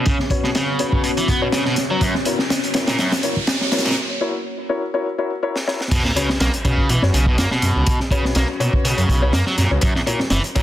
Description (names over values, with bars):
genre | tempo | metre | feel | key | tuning
breakbeat, breaks | 123 BPM | 4/4 | swing 55% on 16ths | unclear | A4 = 442 Hz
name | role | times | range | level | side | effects
deep dark ambient pad | sustained chords | 0.0-3.9 s | A#3 to C#5 | -27 LUFS | left 1 dB | chorus, built-in reverb, vintage 12-bit sampler grit, sidechain pumping
distorted electric guitar | riff | 0.0-10.6 s | E2 to B3 | -22 LUFS | right 1 dB | distortion, low-pass filter, digital delay
riser and sub drop | sound effects | 1.4-7.9 s | none | -29 LUFS | right 1 dB | none
crunchy breakbeat drum kit | drums | 0.1-10.6 s | crash cymbal, hi-hat, kick drum, snare drum | -20 LUFS | equal | low-pass filter on kick, low-pass filter on hats, low-pass filter on cymbals, low-pass filter on snare, low-pass filter on room
dark baby grand piano | stabs | 0.3-10.6 s | C#4 to C#5 | -25 LUFS | left 4 dB | vintage 12-bit sampler grit, low-pass filter, digital delay
detuned saw bass | bass | 6.4-10.6 s | F#1 to B2 | -19 LUFS | equal | none
room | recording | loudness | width
moderate studio reverb, RT60 0.6 s | dense, heavily limited modern master, high-pass filter | -17 LUFS | side -12 dB against mid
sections
0.0-5.9 A section; 5.9-10.6 B section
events
build-up 0.0-5.9; filter sweep on drum 0.0-5.9; riser 1.4-4.0; break 4.0-5.9; drum fill 5.6-5.9; drop 5.9-10.6; impact 5.9-7.9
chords
0.0 Bsus2; 2.0 F#7; 5.9 Bsus2; 9.8 F#7